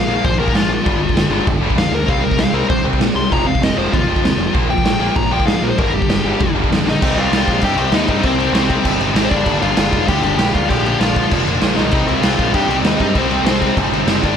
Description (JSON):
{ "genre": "punk rock", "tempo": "195 BPM", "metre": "4/4", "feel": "straight", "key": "C minor", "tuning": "A4 = 440 Hz", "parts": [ { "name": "dark smooth lead guitar", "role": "melody", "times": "0.0-14.4 s", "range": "C4 to C6", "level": "-20 LUFS", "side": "left 4 dB", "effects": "overdrive" }, { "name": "overdriven electric guitar", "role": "riff", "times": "0.0-14.4 s", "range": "F2 to G4", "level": "-23 LUFS", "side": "left 15 dB", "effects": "none" }, { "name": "scooped high-gain guitar", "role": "riff", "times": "0.0-14.4 s", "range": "F2 to Eb4", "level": "-24 LUFS", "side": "equal", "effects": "distortion" }, { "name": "tight distorted guitar", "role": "riff", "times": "0.0-14.4 s", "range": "F2 to C4", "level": "-23 LUFS", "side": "right 15 dB", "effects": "distortion" }, { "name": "growling picked electric bass", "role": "bass", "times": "0.0-14.3 s", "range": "F1 to Bb2", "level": "-22 LUFS", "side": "equal", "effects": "overdrive" }, { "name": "raw garage drum kit", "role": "drums", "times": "0.2-14.3 s", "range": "crash cymbal, kick drum, snare drum", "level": "-18 LUFS", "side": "equal", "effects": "none" } ], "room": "light reverb", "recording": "none", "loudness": "-13 LUFS", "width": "side -8 dB against mid", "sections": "0.0-7.0 A section; 7.0-14.4 B section", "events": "lead electric guitar solo 0.0-7.0; drum fill 6.8, 11.8", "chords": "0.0 Bb; 0.9 Gm; 2.1 Cm; 3.3 Fm; 4.5 Bb; 5.8 Gm; 7.0 Cm; 9.3 Gm; 10.7 Bb; 11.9 Cm", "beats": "0.25 0.55 | 0.86 1.17 1.47 1.78 | 2.09 2.39 2.70 3.01 | 3.31 3.62 3.93 4.24 | 4.54 4.85 5.16 5.46 | 5.77 6.08 6.39 6.70 | 7.00 7.31 7.62 7.92 | 8.23 8.54 8.85 9.15 | 9.46 9.77 10.08 10.38 | 10.69 11.00 11.30 11.61 | 11.92 12.23 12.53 12.84 | 13.15 13.46 13.76 14.07" }